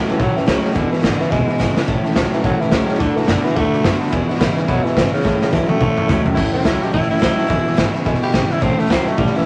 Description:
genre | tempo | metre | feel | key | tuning
rockabilly | 214 BPM | 4/4 | swing 60% on 8ths | A major | A4 = 440 Hz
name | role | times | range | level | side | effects
picked steel-string acoustic guitar | accompaniment | 0.0-9.4 s | E2 to F#4 | -28 LUFS | equal | none
tack piano | accompaniment | 0.0-9.4 s | B4 to B5 | -32 LUFS | equal | none
electric guitar through a small old amp | riff | 0.0-9.5 s | E2 to B3 | -23 LUFS | equal | none
upright bass | bass | 0.0-9.4 s | E1 to F#2 | -27 LUFS | equal | none
growling tenor saxophone | melody | 0.1-9.5 s | C#3 to G4 | -24 LUFS | equal | none
raw garage drum kit | drums | 0.1-9.4 s | crash cymbal, hi-hat, kick drum, snare drum, toms | -21 LUFS | equal | none
room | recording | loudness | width
moderate studio ambience, RT60 0.5 s | none | -17 LUFS | mono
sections
0.0-6.4 A section; 6.4-9.5 B section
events
drum fill 1.6, 5.2-6.4; tenor saxophone solo 6.4-9.5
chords
0.0 A; 0.8 E7; 1.9 A; 3.0 D; 4.1 E7; 5.2 A; 7.5 E7; 8.6 A

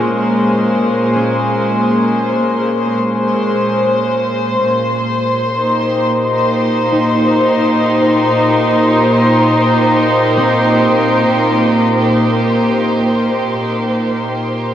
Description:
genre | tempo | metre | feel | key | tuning
ambient | 52 BPM | 4/4 | straight | unclear | A4 = 439 Hz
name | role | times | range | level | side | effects
warm studio string section | sustained chords | 0.0-14.7 s | Bb2 to C5 | -12 LUFS | equal | none
concert harp | arpeggios | 0.0-13.4 s | C4 to F4 | -24 LUFS | right 1 dB | none
warm studio violin section | texture | 4.6-14.7 s | C5 to C6 | -21 LUFS | right 2 dB | none
room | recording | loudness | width
wet shimmer reverb, RT60 7.8 s | worn, warbling old tape, cassette tape, warbly pitch drift | -12 LUFS | side -10 dB against mid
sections
0.0-14.7 A section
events
fade-out 10.8-14.7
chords
0.0 Bbm7; 4.6 Cm/Bb

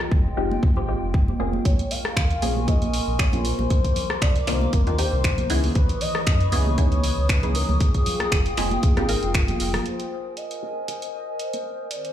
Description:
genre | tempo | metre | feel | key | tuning
deep house | 117 BPM | 4/4 | swing 54% on 16ths | Bb dorian | A4 = 440 Hz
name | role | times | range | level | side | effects
punchy analog drum machine | drums | 0.0-12.1 s | finger snaps, hi-hat, rim click | -28 LUFS | equal | none
warbly tape-like pad | texture | 0.0-12.1 s | Eb3 to Eb6 | -33 LUFS | left 2 dB | chorus, built-in reverb, sidechain pumping
sub bass with octave | bass | 0.1-9.8 s | F1 to Gb2 | -25 LUFS | equal | sidechain pumping
electronic kick drum | drums | 0.1-9.5 s | none | -21 LUFS | equal | none
filtered dub chord stab | stabs | 0.4-11.9 s | Ab3 to Bb4 | -30 LUFS | left 1 dB | phaser, sidechain pumping, dub echo
congas | percussion | 0.5-9.8 s | none | -31 LUFS | right 3 dB | none
warm velvety synth lead | melody | 1.7-12.1 s | Ab4 to F5 | -30 LUFS | left 1 dB | chorus, ping-pong delay
warbly tape-like pad | sustained chords | 1.7-12.1 s | Eb3 to Eb6 | -33 LUFS | left 1 dB | chorus, built-in reverb, sidechain pumping
room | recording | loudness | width
light reverb, digital ambience | played on a big sound system in a bare room, large studio reverb | -20 LUFS | side -11 dB against mid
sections
0.0-9.9 A section; 9.9-12.1 B section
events
filter sweep on synth stab 9.9-12.1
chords
0.0 Fm9; 1.7 Bbm9; 3.7 Cm9; 5.5 Dbm9; 7.8 Fm9; 9.9 Bbm9

